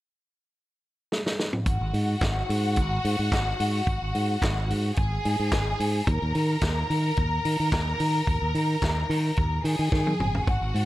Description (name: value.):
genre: disco.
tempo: 109 BPM.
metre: 4/4.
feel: straight.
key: unclear.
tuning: A4 = 440 Hz.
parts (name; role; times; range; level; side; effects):
vintage drum kit; drums; 1.1-10.9 s; handclaps, hi-hat, kick drum, snare drum, toms; -28 LUFS; equal; none.
clear studio string section; second line; 1.7-10.9 s; F#4 to A#5; -29 LUFS; left 1 dB; none.
modern bright fingered electric bass; bass; 1.7-10.9 s; G1 to D#3; -26 LUFS; equal; none.
room: studio reverb.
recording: none.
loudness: -23 LUFS.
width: side -15 dB against mid.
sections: 0.0-1.7 A section; 1.7-10.9 B section.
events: drum fill 1.1-1.7, 9.9-10.5.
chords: 0.0 N.C.; 1.7 F#sus2/G#; 6.1 D#5.